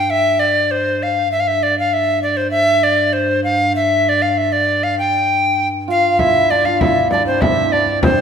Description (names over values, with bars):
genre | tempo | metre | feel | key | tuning
medieval dance | 98 BPM | 2/4 | straight | unclear | A4 = 441 Hz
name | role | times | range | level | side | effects
bright alto recorder | melody | 0.0-8.2 s | C5 to G5 | -14 LUFS | left 1 dB | none
warm viola da gamba | drone | 0.0-8.2 s | G2 | -24 LUFS | right 2 dB | none
hammered dulcimer | second line | 5.9-8.2 s | C4 to F4 | -19 LUFS | right 3 dB | none
frame drum | percussion | 6.2-8.2 s | none | -19 LUFS | left 1 dB | none
room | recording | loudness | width
wet recital hall reverb, RT60 1.6 s | minimal, uncompressed stereo recording | -13 LUFS | side -7 dB against mid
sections
0.0-6.2 A section; 6.2-8.2 A section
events
none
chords
none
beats
| 0.09 0.70 | 1.31 1.92 | 2.53 3.15 | 3.75 4.37 | 4.98 5.59 | 6.20 6.81 | 7.42 8.03